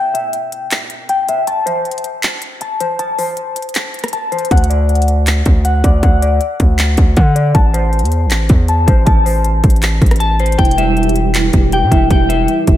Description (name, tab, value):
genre	hip hop, trap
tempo	158 BPM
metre	4/4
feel	half-time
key	unclear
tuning	A4 = 438 Hz
part	semi-hollow electric guitar	arpeggios	0.0-12.8 s	C5 to A5	-18 LUFS	left 3 dB	analog chorus, low-pass filter, tape echo
part	trap drum kit	drums	0.1-12.8 s	handclaps, hi-hat, kick drum, rim click	-14 LUFS	equal	none
part	distorted 808-style bass	bass	4.5-12.8 s	E1 to D3	-14 LUFS	equal	distortion
part	felt-muted upright piano	accompaniment	10.6-12.8 s	E3 to G4	-18 LUFS	right 3 dB	ensemble chorus, low-pass filter
room	moderate lush hall reverb, RT60 2.1 s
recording	dreamy mix soaked in reverb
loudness	-11 LUFS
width	side -12 dB against mid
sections	0.0-12.8 A section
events	break 0.0-4.5; filter sweep 0.0-10.6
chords	0.0 Em; 1.5 Am/C; 4.5 D; 7.5 Am; 10.6 Em